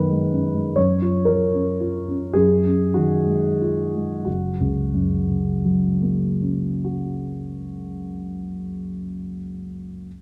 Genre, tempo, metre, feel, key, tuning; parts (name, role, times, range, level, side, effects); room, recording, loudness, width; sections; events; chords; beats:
classical, impressionist solo piano; 42-68 BPM; 3/4; rubato; F# major; A4 = 438 Hz
warm grand piano; solo; 0.0-10.1 s; F#1 to C#5; -22 LUFS; equal
moderate recital hall reverb, RT60 1.6 s; -22 LUFS; mono
0.0-4.2 A section; 4.2-7.9 B section
slowing down 0.0-4.2
0.0 B69/F#; 0.8 F#maj7; 2.3 D#m11/F#; 4.2 F#
| 0.76 1.77 2.92 | 4.25 5.47 6.70